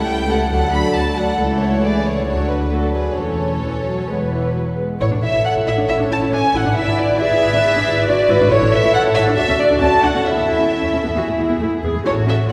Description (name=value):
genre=quick classical-period movement for string orchestra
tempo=136 BPM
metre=4/4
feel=straight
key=A major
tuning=A4 = 440 Hz
part: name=warm chamber violin section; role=melody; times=0.0-12.4 s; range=G#4 to B5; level=-27 LUFS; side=equal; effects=none
part: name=warm chamber violin section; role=second line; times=0.0-12.5 s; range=B3 to A5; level=-21 LUFS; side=equal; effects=none
part: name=rich studio viola section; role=accompaniment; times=0.0-12.5 s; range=E3 to B4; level=-24 LUFS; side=equal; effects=none
part: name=warm chamber cello section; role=bass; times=0.1-12.5 s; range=C#2 to A4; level=-27 LUFS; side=equal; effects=none
part: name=warm chamber double bass section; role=bass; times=0.1-12.5 s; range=E1 to E2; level=-25 LUFS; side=equal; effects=none
room=wet concert hall reverb, RT60 2.5 s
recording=heard from further back in the room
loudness=-17 LUFS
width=mono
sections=0.0-5.0 A section; 5.0-12.5 B section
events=none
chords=0.0 A7/C#; 0.5 D; 1.4 A/C#; 2.3 D6; 3.2 A/E; 4.1 E; 5.0 A; 6.8 E7/G#; 8.5 A; 9.4 D; 10.3 A/E; 11.2 E